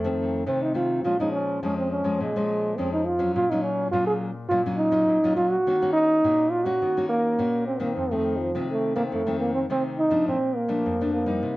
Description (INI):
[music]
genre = samba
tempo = 104 BPM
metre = 4/4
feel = straight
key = unclear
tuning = A4 = 444 Hz
[part]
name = mellow trombone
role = melody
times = 0.0-11.6 s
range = F3 to Ab4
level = -23 LUFS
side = right 1 dB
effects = plate reverb
[part]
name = nylon-string guitar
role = accompaniment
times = 0.0-11.6 s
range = F2 to Gb4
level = -28 LUFS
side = left 2 dB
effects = none
[sound]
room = wet studio reverb, RT60 0.8 s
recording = worn, warbling old tape, cassette tape, warbly pitch drift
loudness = -22 LUFS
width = side -18 dB against mid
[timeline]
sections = 0.0-10.3 A section; 10.3-11.6 B section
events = none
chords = 0.0 F7; 1.0 Bbm7; 3.3 Gbmaj7/Bb; 5.7 Ebm7; 8.0 F7; 10.3 Bbmaj7